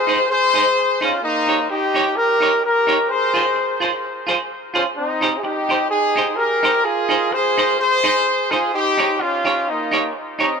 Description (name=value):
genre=ska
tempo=128 BPM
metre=4/4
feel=swing 54% on 8ths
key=unclear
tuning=A4 = 440 Hz
part: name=warm horn section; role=melody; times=0.0-10.6 s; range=Bb3 to C5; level=-17 LUFS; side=left 1 dB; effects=dub echo
part: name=semi-hollow electric guitar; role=accompaniment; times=0.1-10.5 s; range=Eb4 to Db5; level=-22 LUFS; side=right 3 dB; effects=tremolo, dub echo
room=moderate plate reverb, RT60 2.6 s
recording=none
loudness=-16 LUFS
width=side -6 dB against mid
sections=0.0-10.6 A section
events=none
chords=0.0 Fm7 (rootless); 1.2 Eb7; 3.1 Dbmaj7 (rootless); 5.0 Abmaj7; 6.8 Fm7; 8.7 Eb7